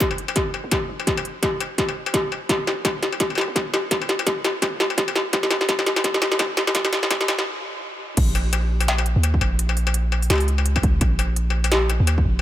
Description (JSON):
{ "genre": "half-time drum and bass", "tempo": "169 BPM", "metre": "4/4", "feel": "swing 57% on 16ths, half-time", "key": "unclear", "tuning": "A4 = 440 Hz", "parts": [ { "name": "long sustained 808-style bass", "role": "bass", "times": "0.0-12.4 s", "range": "Ab1 to Eb2", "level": "-20 LUFS", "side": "equal", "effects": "high-pass filter" }, { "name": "electronic kick drum", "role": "drums", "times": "0.0-12.2 s", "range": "none", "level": "-25 LUFS", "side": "equal", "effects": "none" }, { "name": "industrial drum kit", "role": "drums", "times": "0.0-12.4 s", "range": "crash cymbal, hi-hat, snare drum, struck metal", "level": "-21 LUFS", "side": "left 1 dB", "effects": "none" } ], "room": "light reverb", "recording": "high-pass filter", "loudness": "-19 LUFS", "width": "side -13 dB against mid", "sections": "0.0-8.2 A section; 8.2-12.4 B section", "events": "build-up 0.0-8.2; drum fill 0.0-7.5; stop 7.5-8.2; drop 8.2-12.4", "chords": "none" }